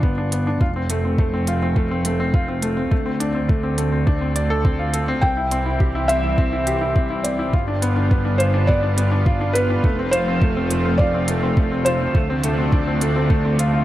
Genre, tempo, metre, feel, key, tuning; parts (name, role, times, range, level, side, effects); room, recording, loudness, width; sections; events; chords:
piano and strings electronica; 104 BPM; 4/4; straight; A4 = 440 Hz
bright upright piano; riff; 0.0-13.8 s; A3 to D5; -23 LUFS; left 1 dB; digital delay
rich symphonic double bass section; bass; 0.0-13.8 s; F1 to D2; -22 LUFS; equal; sidechain pumping
electronic kick drum; drums; 0.0-13.4 s; -18 LUFS; equal
electronic hi-hat; drums; 0.3-13.7 s; -28 LUFS; right 3 dB
felt-muted upright piano; melody; 5.2-13.8 s; B4 to G5; -24 LUFS; equal
lush unison pad; sustained chords; 5.2-13.8 s; C3 to G4; -28 LUFS; equal; chorus, sidechain pumping
light reverb, studio ambience; -17 LUFS; side -14 dB against mid
0.0-13.8 A section
0.0 G7; 0.6 F; 2.9 Dm7; 5.2 C; 7.5 G7; 9.8 F; 12.1 Dm7